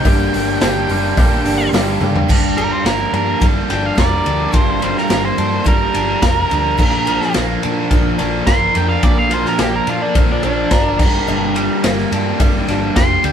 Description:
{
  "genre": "classic rock",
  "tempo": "107 BPM",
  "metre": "4/4",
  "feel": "straight",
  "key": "G minor",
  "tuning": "A4 = 440 Hz",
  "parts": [
    { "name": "octave-fuzz lead guitar", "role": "melody", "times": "0.0-13.3 s", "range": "D4 to C6", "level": "-20 LUFS", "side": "right 1 dB", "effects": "distortion" },
    { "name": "picked steel-string acoustic guitar", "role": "accompaniment", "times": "0.0-13.3 s", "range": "G2 to Bb4", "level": "-25 LUFS", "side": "right 1 dB", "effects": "none" },
    { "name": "biting overdriven guitar", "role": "riff", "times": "0.0-13.3 s", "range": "G2 to Bb4", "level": "-18 LUFS", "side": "right 1 dB", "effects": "none" },
    { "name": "hollow-body short-scale picked electric bass", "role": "bass", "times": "0.1-13.3 s", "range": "F1 to Bb2", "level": "-23 LUFS", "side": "left 1 dB", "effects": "none" },
    { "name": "raw garage drum kit", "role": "drums", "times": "0.1-13.3 s", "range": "crash cymbal, hi-hat, kick drum, ride cymbal, snare drum, toms", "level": "-17 LUFS", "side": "equal", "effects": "none" },
    { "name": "cowbell", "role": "percussion", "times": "0.1-1.9, 11.3-13.1 s", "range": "none", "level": "-30 LUFS", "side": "left 5 dB", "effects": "none" }
  ],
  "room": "light reverb",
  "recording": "band playing live in one room",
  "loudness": "-13 LUFS",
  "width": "side -8 dB against mid",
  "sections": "0.0-2.3 A section; 2.3-13.3 B section",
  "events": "drum fill 2.0; lead electric guitar solo 2.3-13.3",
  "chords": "0.0 Gm; 6.8 Bb; 11.0 Gm"
}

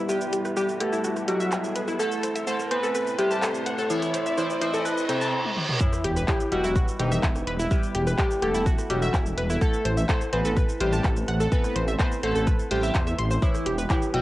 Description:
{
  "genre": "melodic techno",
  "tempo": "126 BPM",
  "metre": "4/4",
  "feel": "straight",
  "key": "E minor",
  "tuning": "A4 = 440 Hz",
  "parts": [
    { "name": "dark analog pad", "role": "sustained chords", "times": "0.0-14.2 s", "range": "G3 to C5", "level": "-34 LUFS", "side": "right 1 dB", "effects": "chorus, sidechain pumping" },
    { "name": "analog pluck", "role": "arpeggios", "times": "0.0-14.2 s", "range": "E4 to C6", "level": "-29 LUFS", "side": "equal", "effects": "chorus, sidechain pumping, analog delay" },
    { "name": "riser, reverse cymbal and sub drop", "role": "sound effects", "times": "0.2-7.7 s", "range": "none", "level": "-34 LUFS", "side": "right 1 dB", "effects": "none" },
    { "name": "resonant sweep polysynth", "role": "melody", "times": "0.1-14.2 s", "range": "C3 to B4", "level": "-31 LUFS", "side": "equal", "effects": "chorus, sidechain pumping, cassette tape, analog delay" },
    { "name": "dark detuned synth bell", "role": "second line", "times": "0.1-14.2 s", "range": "C4 to B4", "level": "-30 LUFS", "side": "equal", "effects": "chorus, sidechain pumping, analog delay" },
    { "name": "house drum kit", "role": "drums", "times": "0.1-14.2 s", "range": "handclaps, hi-hat, rim click, shaker, toms", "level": "-33 LUFS", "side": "equal", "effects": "none" },
    { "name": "electronic kick drum", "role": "drums", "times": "5.8-14.0 s", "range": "none", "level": "-24 LUFS", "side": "equal", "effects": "none" },
    { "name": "swelling detuned saw bass", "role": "bass", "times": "6.0-14.2 s", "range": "E1 to E2", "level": "-27 LUFS", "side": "equal", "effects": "sidechain pumping" }
  ],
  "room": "wet spring reverb, RT60 2.0 s, digital ambience",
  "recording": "home recording on cassette",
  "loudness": "-22 LUFS",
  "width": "side -16 dB against mid",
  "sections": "0.0-5.8 A section; 5.8-14.2 B section",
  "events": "build-up 0.0-5.8; filter sweep on synth arpeggio sound 0.0-5.8; filter sweep on analog polysynth 0.0-5.8; riser 0.2-5.3; reverse cymbal 4.9-5.8; drum fill 5.4-5.8; drop 5.8-14.2; impact 5.8-7.7",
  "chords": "0.0 Em; 2.0 Amadd9; 5.8 Em; 9.6 Amadd9; 13.4 Em"
}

